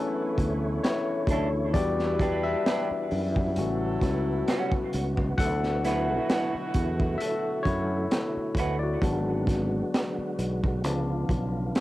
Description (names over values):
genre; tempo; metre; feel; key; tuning
R&B, neo-soul; 66 BPM; 4/4; swing 53% on 16ths; unclear; A4 = 441 Hz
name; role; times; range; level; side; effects
barky tine electric piano; accompaniment; 0.0-11.8 s; E#3 to F#5; -30 LUFS; left 4 dB; overdrive, phaser, cassette tape
tonewheel organ; sustained chords; 0.0-11.8 s; C#3 to C#5; -35 LUFS; right 1 dB; slow rotary speaker, overdrive, chorus vibrato, cassette tape
warm horn section; stabs; 0.0-8.5 s; B2 to B4; -37 LUFS; right 3 dB; cassette tape
fretless electric bass; bass; 0.4-11.7 s; G#1 to F#2; -29 LUFS; equal; none
crunchy breakbeat drum kit; drums; 0.4-11.8 s; hi-hat, kick drum, snare drum; -29 LUFS; equal; cassette tape
electric guitar through a small old amp; second line; 1.3-8.7 s; G3 to B4; -33 LUFS; right 3 dB; cassette tape, tape echo
room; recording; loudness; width
little or no reverb; home recording on cassette; -24 LUFS; side -16 dB against mid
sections
0.0-11.8 A section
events
tine electric piano solo 0.0-11.8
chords
0.0 Bm11; 1.7 Em7; 3.6 A13; 5.4 D69; 9.0 G#m7b5; 10.8 C#7b9